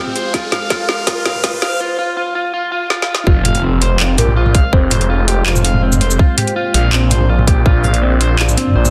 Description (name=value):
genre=half-time drum and bass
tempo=164 BPM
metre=4/4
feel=half-time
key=F minor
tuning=A4 = 440 Hz
part: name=deep dark ambient pad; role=sustained chords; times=0.1-8.9 s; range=Ab3 to F5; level=-28 LUFS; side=equal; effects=chorus, built-in reverb, sidechain pumping
part: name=clean electric guitar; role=arpeggios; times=0.0-8.9 s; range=C4 to F5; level=-22 LUFS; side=equal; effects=tape echo
part: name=riser, swell and impact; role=sound effects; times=0.0-4.7 s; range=none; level=-26 LUFS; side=equal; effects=none
part: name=drum and bass drum kit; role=drums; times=0.1-8.9 s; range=handclaps, hi-hat, shaker, snare drum, toms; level=-19 LUFS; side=equal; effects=soft clipping on snare
part: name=electronic kick drum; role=drums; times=0.3-7.7 s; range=none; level=-15 LUFS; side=equal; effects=none
part: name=folk marimba with soft mallets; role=melody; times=3.3-5.1 s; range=F4 to C5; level=-28 LUFS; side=equal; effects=vintage 12-bit sampler grit, dub echo
part: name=phased detuned saw bass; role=bass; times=3.3-8.9 s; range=F1 to Bb1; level=-16 LUFS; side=equal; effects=phaser
room=light reverb, digital ambience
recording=dense, heavily limited modern master, high-pass filter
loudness=-14 LUFS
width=mono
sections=0.0-3.3 A section; 3.3-8.9 B section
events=build-up 0.0-3.3; drum fill 0.0-1.8, 2.9-3.3; riser 0.0-1.8; swell 2.6-3.3; drop 3.3-8.9; impact 3.3-4.7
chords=0.3 Db; 3.3 Fm; 6.2 Bb